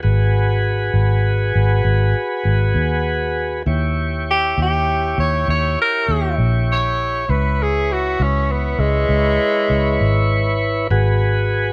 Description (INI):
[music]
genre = slow blues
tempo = 66 BPM (dotted quarters)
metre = 12/8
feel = straight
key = G# minor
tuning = A4 = 439 Hz
[part]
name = tonewheel organ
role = sustained chords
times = 0.0-11.7 s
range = E4 to C#5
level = -24 LUFS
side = equal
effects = slow rotary speaker
[part]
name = vintage muted fingered electric bass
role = bass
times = 0.0-11.7 s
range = G#1 to D#2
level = -20 LUFS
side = equal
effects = none
[part]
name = warm tenor saxophone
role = second line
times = 4.3-10.6 s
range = G#3 to C#5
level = -21 LUFS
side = equal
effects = none
[sound]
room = little or no reverb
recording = none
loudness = -18 LUFS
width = mono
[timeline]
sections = 0.0-11.7 A section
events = tenor saxophone solo 0.0-11.7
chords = 0.0 G#m7; 3.7 D#7b9; 7.3 C#m7; 10.9 G#m7